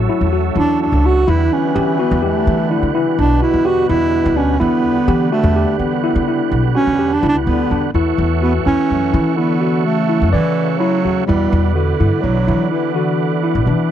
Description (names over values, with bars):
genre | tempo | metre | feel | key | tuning
progressive instrumental, progressive | 126 BPM | 7/4 | straight | E dorian | A4 = 440 Hz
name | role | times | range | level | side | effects
breathy trombone | second line | 0.0-13.9 s | B2 to F#3 | -23 LUFS | left 14 dB | none
tonewheel organ | accompaniment | 0.0-13.9 s | D3 to C#5 | -23 LUFS | right 16 dB | chorus vibrato
upright bass | bass | 0.0-13.9 s | B1 to E3 | -18 LUFS | equal | none
tine electric piano | arpeggios | 0.1-13.9 s | D4 to D5 | -21 LUFS | left 2 dB | overdrive, fast stereo tremolo
mellow bass clarinet | melody | 0.6-13.6 s | D3 to F#4 | -17 LUFS | right 2 dB | none
room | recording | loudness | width
light reverb | dry, close 1970s-style studio recording | -13 LUFS | side -10 dB against mid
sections
0.0-8.0 A section; 8.0-13.9 B section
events
bass clarinet solo 0.0-8.0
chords
0.0 Dmaj9/E; 1.3 Em7; 8.0 B7sus4/E (rootless); 11.3 E7(no3)